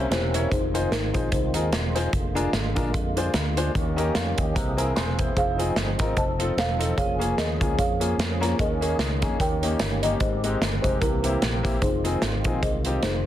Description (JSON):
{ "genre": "uptempo gospel", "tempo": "149 BPM", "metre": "4/4", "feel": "swing 56% on 8ths", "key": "unclear", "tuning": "A4 = 441 Hz", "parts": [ { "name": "buzzing marimba with soft mallets", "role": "melody", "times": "0.0-2.1, 5.4-13.3 s", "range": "Eb4 to A5", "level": "-29 LUFS", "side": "equal", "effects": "slapback echo" }, { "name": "bright upright piano", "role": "accompaniment", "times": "0.0-13.0 s", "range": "Ab2 to C6", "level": "-29 LUFS", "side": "left 2 dB", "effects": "none" }, { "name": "percussive tonewheel organ", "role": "sustained chords", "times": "0.0-13.3 s", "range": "D3 to A4", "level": "-31 LUFS", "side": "right 3 dB", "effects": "slow rotary speaker, chorus vibrato" }, { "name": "fingered electric bass", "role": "bass", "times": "0.0-13.3 s", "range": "E1 to F2", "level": "-28 LUFS", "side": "equal", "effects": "none" }, { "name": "modern studio drum kit", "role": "drums", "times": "0.1-13.1 s", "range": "hi-hat, kick drum, snare drum", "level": "-26 LUFS", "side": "equal", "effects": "none" } ], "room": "light reverb, small room ambience", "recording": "dense, heavily limited modern master", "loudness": "-22 LUFS", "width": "side -12 dB against mid", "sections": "0.0-13.3 A section", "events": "upright piano fill 4.8-5.4", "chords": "0.0 C7b9; 0.5 Fm7; 2.1 Bb7/F; 3.8 Eb7; 4.6 C7b13; 5.4 Fm7; 6.2 F7; 7.0 Bbm7/F; 8.6 Eb7sus4; 9.4 Eb7; 10.2 Abmaj7; 11.0 C7; 11.8 Fm7" }